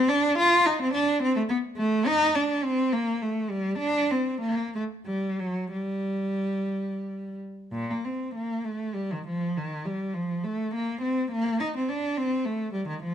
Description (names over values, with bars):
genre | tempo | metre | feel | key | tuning
classical, baroque-style suite movement for unaccompanied cello | 56-71 BPM (dotted quarters) | 6/8 | rubato | G minor, Bb major from 7.7 s | A4 = 438 Hz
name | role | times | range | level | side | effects
rich cello | solo | 0.0-13.1 s | Bb2 to F4 | -25 LUFS | equal | none
room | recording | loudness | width
moderate stone room reverb, RT60 1.1 s | none | -25 LUFS | side -9 dB against mid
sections
0.0-7.7 A section; 7.7-13.1 A section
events
none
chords
none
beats
| 0.38 1.23 | 2.09 2.95 | 3.82 4.74 | 5.70 6.69 | 7.72 8.65 | 9.54 10.43 | 11.30 12.15 | 13.01